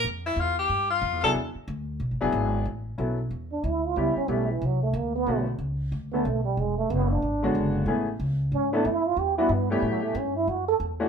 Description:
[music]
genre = jazz, small-group swing and bop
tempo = 184 BPM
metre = 4/4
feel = swing 62% on 8ths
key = A major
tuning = A4 = 440 Hz
[part]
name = bright tenor saxophone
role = melody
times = 0.0-1.3 s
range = E4 to A4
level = -24 LUFS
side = left 3 dB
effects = none
[part]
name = upright bass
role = bass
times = 0.0-11.1 s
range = E1 to A2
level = -29 LUFS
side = equal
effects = none
[part]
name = warm upright piano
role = accompaniment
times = 1.2-11.1 s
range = D3 to C#5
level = -27 LUFS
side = left 2 dB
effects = none
[part]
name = trombone with plunger mute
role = second line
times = 3.5-10.8 s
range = E3 to A4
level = -26 LUFS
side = right 4 dB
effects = none
[sound]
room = wet studio reverb, RT60 0.8 s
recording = band playing live in one room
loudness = -24 LUFS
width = side -6 dB against mid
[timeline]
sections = 0.0-2.7 A section; 2.7-11.1 A section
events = tenor saxophone solo 0.0-2.7; trombone solo 2.7-11.1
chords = 0.1 F5; 1.4 E7; 2.7 A69; 4.0 C#m7b5; 4.6 Csus2; 5.3 Bm9; 6.6 E13; 7.9 Amaj9; 9.2 Em9; 9.8 A9; 10.5 Dmaj7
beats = | 0.05 0.38 0.70 1.03 | 1.36 1.68 2.01 2.33 | 2.66 2.99 3.31 3.64 | 3.97 4.29 4.62 4.95 | 5.27 5.60 5.92 6.25 | 6.58 6.90 7.23 7.55 | 7.88 8.20 8.53 8.86 | 9.18 9.51 9.83 10.16 | 10.48 10.81

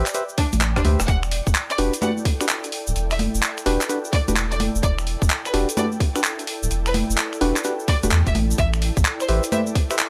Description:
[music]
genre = UK garage, two-step garage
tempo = 128 BPM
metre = 4/4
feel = swing 65% on 16ths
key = E minor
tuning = A4 = 440 Hz
[part]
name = percussive organ stab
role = stabs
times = 0.0-10.0 s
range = D4 to E5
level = -27 LUFS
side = equal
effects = chorus, digital delay
[part]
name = soft dub sub bass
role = bass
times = 0.0-9.4 s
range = D1 to E2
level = -25 LUFS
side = equal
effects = none
[part]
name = ethereal airy pad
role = texture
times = 0.1-10.1 s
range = E4 to G5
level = -35 LUFS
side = equal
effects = ensemble chorus, built-in reverb, sidechain pumping
[part]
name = breakbeat sampler-style drum kit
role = drums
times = 0.1-10.1 s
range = congas, finger snaps, handclaps, hi-hat, rim click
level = -26 LUFS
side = equal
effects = studio reverb
[part]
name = tube shaker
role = percussion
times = 0.1-10.1 s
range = none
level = -34 LUFS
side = equal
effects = none
[part]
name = rich studio violin section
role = melody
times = 0.4-9.6 s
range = D4 to F#5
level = -30 LUFS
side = equal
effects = digital delay
[part]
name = electronic kick drum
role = drums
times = 0.4-9.9 s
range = none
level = -23 LUFS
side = equal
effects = overdrive, studio reverb
[sound]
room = digital ambience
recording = none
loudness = -21 LUFS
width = mono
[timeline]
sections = 0.0-10.1 A section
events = drum fill 0.6-1.1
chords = 0.0 Am9; 1.1 Em9; 8.3 Am9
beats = 0.15 0.61 | 1.08 1.55 2.02 2.49 | 2.96 3.43 3.90 4.37 | 4.83 5.30 5.77 6.24 | 6.71 7.18 7.65 8.12 | 8.58 9.05 9.52 9.99

